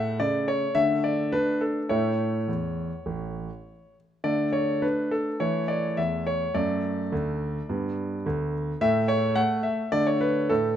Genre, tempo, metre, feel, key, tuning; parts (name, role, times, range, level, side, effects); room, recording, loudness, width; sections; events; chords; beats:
classical-period piano sonatina; 105 BPM; 4/4; rubato; D major; A4 = 442 Hz
clear concert grand piano; solo; 0.0-10.8 s; A1 to F#5; -24 LUFS; equal
moderate recital hall reverb, RT60 1.7 s; close, detailed microphones; -24 LUFS; side -10 dB against mid
0.0-10.8 A section
0.0 A; 0.8 D5; 1.9 A; 4.2 D5; 5.4 A5/E; 6.6 D/F#; 7.7 G; 8.8 N.C.; 9.9 D5
0.19 0.76 1.32 | 1.90 2.48 3.07 3.65 | 4.24 4.83 5.40 5.98 | 6.55 7.12 7.69 8.25 | 8.81 9.37 9.93 10.50